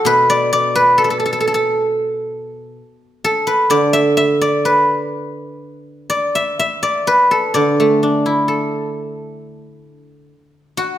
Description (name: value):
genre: chinese traditional, Chinese solo plucked strings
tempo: 62-67 BPM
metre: 2/4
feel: rubato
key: D gong mode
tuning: A4 = 438 Hz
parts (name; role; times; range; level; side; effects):
- guzheng; solo; 0.0-11.0 s; B2 to E5; -14 LUFS; equal; none
room: moderate recital hall reverb, RT60 1.4 s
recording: none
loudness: -13 LUFS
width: side -12 dB against mid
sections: 0.0-11.0 A section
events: none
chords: none